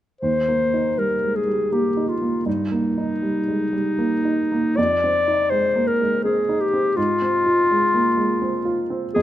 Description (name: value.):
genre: classical, romantic duo for clarinet and grand piano.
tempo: 82 BPM.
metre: 3/4.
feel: rubato.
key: Eb major.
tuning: A4 = 440 Hz.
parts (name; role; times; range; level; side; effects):
warm clarinet; melody; 0.2-9.2 s; Eb4 to D5; -20 LUFS; left 2 dB; none.
warm baby grand piano; accompaniment; 0.2-9.2 s; Eb2 to F4; -23 LUFS; right 2 dB; none.
room: light reverb.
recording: close, detailed microphones.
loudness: -18 LUFS.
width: side -13 dB against mid.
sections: 0.2-9.2 A section.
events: none.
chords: 0.2 Eb; 2.5 Eb/G; 4.8 Fm7; 7.0 Fm/Ab.